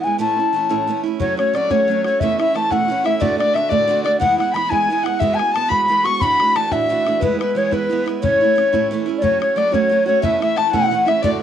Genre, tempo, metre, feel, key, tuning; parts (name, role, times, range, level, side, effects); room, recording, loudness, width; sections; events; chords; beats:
celtic folk, Celtic jig; 120 BPM (dotted quarters); 6/8; straight; A major; A4 = 440 Hz
wooden flute; melody; 0.0-11.3 s; B4 to C#6; -17 LUFS; left 2 dB; cassette tape
picked steel-string acoustic guitar; accompaniment; 0.0-11.4 s; D2 to F#4; -22 LUFS; right 8 dB; cassette tape
dark fiddle; second line; 1.2-11.4 s; B4 to C#6; -24 LUFS; left 7 dB; cassette tape
bodhran; percussion; 1.2-11.3 s; -26 LUFS; left 4 dB
wet studio reverb, RT60 0.5 s; home recording on cassette; -15 LUFS; side -9 dB against mid
0.0-1.2 A section; 1.2-9.2 B section; 9.2-11.4 B section
0.2 A; 1.2 F#m; 2.2 Aadd9/E; 3.2 D; 4.2 E; 5.2 Eadd9; 6.2 Dadd9; 7.2 E; 8.2 A; 9.2 F#m; 10.2 Aadd9/E
| 0.20 0.70 | 1.20 1.71 | 2.21 2.71 | 3.21 3.71 | 4.21 4.71 | 5.21 5.71 | 6.22 6.72 | 7.22 7.72 | 8.22 8.72 | 9.23 9.73 | 10.23 10.73 | 11.23